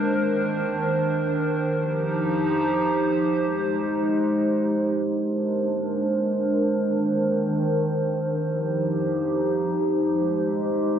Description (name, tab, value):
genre	hip hop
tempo	free time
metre	none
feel	none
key	C minor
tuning	A4 = 440 Hz
part	warbly tape-like pad	solo	0.0-11.0 s	Eb3 to C5	-21 LUFS	equal	chorus, built-in reverb
room	wet lush hall reverb, RT60 2.7 s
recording	dreamy mix soaked in reverb, low-pass filter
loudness	-21 LUFS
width	side -9 dB against mid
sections	0.0-5.1 A section; 5.1-11.0 B section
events	filter sweep 5.1-11.0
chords	0.0 Cm9; 1.7 Eb69; 3.4 Abmaj7; 5.1 Bb9; 6.7 Cm9; 8.4 Eb69; 10.1 Abmaj7